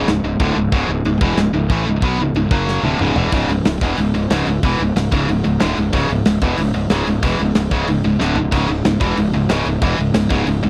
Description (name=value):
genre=heavy metal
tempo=185 BPM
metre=4/4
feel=straight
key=C# minor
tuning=A4 = 441 Hz
part: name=tight distorted guitar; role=riff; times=0.0-10.7 s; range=C#2 to B3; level=-20 LUFS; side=equal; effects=distortion
part: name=fuzz fingered electric bass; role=bass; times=0.0-10.7 s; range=C#1 to B1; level=-23 LUFS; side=equal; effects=overdrive
part: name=modern studio drum kit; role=drums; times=0.1-10.7 s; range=china cymbal, crash cymbal, kick drum, snare drum, toms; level=-23 LUFS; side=equal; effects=none
room=little or no reverb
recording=dry, close 1970s-style studio recording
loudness=-17 LUFS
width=mono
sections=0.0-3.3 A section; 3.3-10.7 B section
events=half time 0.0-3.3; drum fill 2.7-3.3, 8.2-8.5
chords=0.0 C#m; 2.5 F#5; 2.8 C#m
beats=0.07 0.40 | 0.73 1.05 1.38 1.71 | 2.03 2.36 2.69 3.01 | 3.34 3.66 3.99 4.31 | 4.64 4.96 5.29 5.61 | 5.94 6.26 6.59 6.91 | 7.23 7.56 7.88 8.21 | 8.53 8.85 9.18 9.50 | 9.82 10.15 10.47